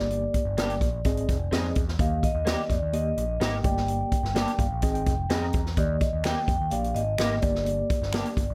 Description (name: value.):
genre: uptempo 1960s-style soul.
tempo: 127 BPM.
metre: 4/4.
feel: straight.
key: Eb major.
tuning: A4 = 440 Hz.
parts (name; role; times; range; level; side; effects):
vibraphone with medium mallets; melody; 0.0-8.5 s; D5 to G5; -33 LUFS; equal; tape echo.
mellow reed electric piano; accompaniment; 0.0-8.4 s; G2 to Bb5; -34 LUFS; equal; fast tremolo.
overdriven picked electric bass; bass; 0.0-8.5 s; F1 to F2; -32 LUFS; equal; none.
swinging big-band drum kit; drums; 0.1-8.5 s; hi-hat, kick drum, snare drum; -30 LUFS; equal; none.
electric guitar through a small old amp; stabs; 0.6-8.3 s; Bb3 to Ab4; -35 LUFS; equal; ensemble chorus.
finger snaps; percussion; 6.2-8.2 s; none; -39 LUFS; equal; none.
room: light reverb.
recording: none.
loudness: -26 LUFS.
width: mono.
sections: 0.0-8.5 A section.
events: reed electric piano fill 4.4-5.8.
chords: 0.0 Gm; 1.1 Ab; 2.0 Eb; 3.7 Gm; 4.8 Ab; 5.8 Eb; 7.4 Gm.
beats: | 0.11 0.58 1.05 1.53 | 2.00 2.47 2.94 3.42 | 3.89 4.36 4.83 5.30 | 5.78 6.25 6.72 7.19 | 7.67 8.14.